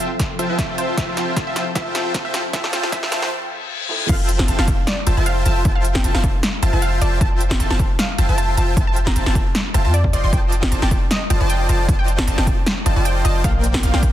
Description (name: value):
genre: future bass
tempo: 154 BPM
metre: 4/4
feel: swing 54% on 16ths, half-time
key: F major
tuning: A4 = 440 Hz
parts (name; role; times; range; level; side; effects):
- wide unison pluck; melody; 0.0-14.1 s; C5 to Bb5; -29 LUFS; equal; sidechain pumping, tape echo
- felt-muted upright piano; accompaniment; 0.0-4.1 s; F3 to E5; -36 LUFS; right 5 dB; none
- ethereal airy pad; sustained chords; 0.0-3.3 s; F3 to E5; -32 LUFS; equal; ensemble chorus, built-in reverb, sidechain pumping
- dense compressed supersaw; riff; 0.0-14.1 s; Bb3 to C6; -24 LUFS; equal; sidechain pumping, low-pass filter
- big-room dance drum kit; drums; 0.0-14.1 s; crash cymbal, hi-hat, snare drum; -23 LUFS; equal; overdrive, high-pass filter on snare, high-pass filter on hats, high-pass filter on cymbals, high-pass filter on room
- electronic kick drum; drums; 0.2-14.1 s; none; -20 LUFS; equal; overdrive
- reverse cymbal; sound effects; 3.5-4.1 s; none; -24 LUFS; left 8 dB; none
- wide unison pluck; arpeggios; 4.1-14.1 s; F5 to C6; -30 LUFS; equal; sidechain pumping, dub echo
- warm 808-style bass; bass; 4.1-14.1 s; F1 to F2; -19 LUFS; equal; sidechain pumping
room: little or no reverb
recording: dense, heavily limited modern master, high-pass filter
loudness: -16 LUFS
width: side -12 dB against mid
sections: 0.0-4.1 A section; 4.1-14.1 B section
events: build-up 0.0-4.1; drum fill 0.0-3.3; filter sweep on ambient pad 0.0-4.1; filter sweep 0.0-4.1; break 3.3-4.1; reverse cymbal 3.5-4.1; drop 4.1-14.1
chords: 0.0 Fmaj7; 10.1 F13; 13.4 Bb6